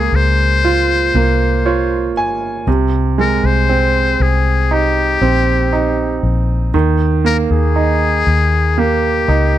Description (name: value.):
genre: pop.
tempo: 59 BPM.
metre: 4/4.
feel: straight.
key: Ab major.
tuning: A4 = 440 Hz.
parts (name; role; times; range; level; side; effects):
trumpet with metal mute; melody; 0.0-9.6 s; G4 to C5; -17 LUFS; left 5 dB; slapback echo.
bright baby grand piano; accompaniment; 0.0-9.6 s; C3 to Ab5; -17 LUFS; right 6 dB; none.
vintage muted fingered electric bass; bass; 0.0-9.6 s; G1 to Eb2; -16 LUFS; left 1 dB; none.
room: light reverb.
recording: dry, close 1970s-style studio recording.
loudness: -12 LUFS.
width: side -12 dB against mid.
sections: 0.0-9.6 A section.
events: grand piano fill 1.1-2.7.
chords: 0.0 Db6; 2.7 Abmaj7/C; 6.7 Eb.